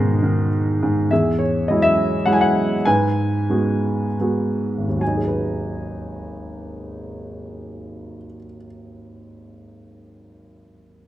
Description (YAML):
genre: classical, lyrical solo piano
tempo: 68-107 BPM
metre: 3/4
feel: rubato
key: G# minor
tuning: A4 = 437 Hz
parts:
  - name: warm grand piano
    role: solo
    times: 0.0-11.1 s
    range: G#1 to G#5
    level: -19 LUFS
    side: equal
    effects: none
room: moderate recital hall reverb, RT60 1.4 s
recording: none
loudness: -17 LUFS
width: side -13 dB against mid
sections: 0.0-1.1 A section; 1.1-5.0 B section; 5.0-10.1 C section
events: slowing down 1.1-5.0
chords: 0.0 G#m; 1.1 Eadd9; 2.9 G#m7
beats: 0.52 | 1.11 1.69 2.26 | 2.86 3.50 4.21 | 5.02 5.88 6.72 | 7.55 8.38 9.25